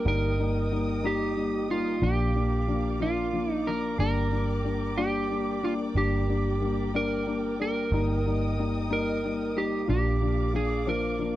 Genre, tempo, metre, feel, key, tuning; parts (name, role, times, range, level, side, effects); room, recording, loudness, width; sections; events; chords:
six-eight pop ballad; 61 BPM (dotted quarters); 6/8; straight; Eb major; A4 = 440 Hz
electric slide guitar; melody; 0.0-11.4 s; F4 to Bb4; -30 LUFS; right 3 dB
felt-muted upright piano; accompaniment; 0.0-11.4 s; F3 to C5; -30 LUFS; left 4 dB
dark studio string section; sustained chords; 0.0-11.4 s; Bb4 to Eb6; -39 LUFS; right 2 dB
vintage muted fingered electric bass; bass; 0.1-11.4 s; G1 to Bb1; -29 LUFS; right 1 dB
studio reverb; dry, close 1970s-style studio recording; -25 LUFS; side -14 dB against mid
0.0-11.4 A section
0.1 Eb/G; 2.0 Bb; 4.0 Gm; 7.9 Eb/G; 9.9 Bb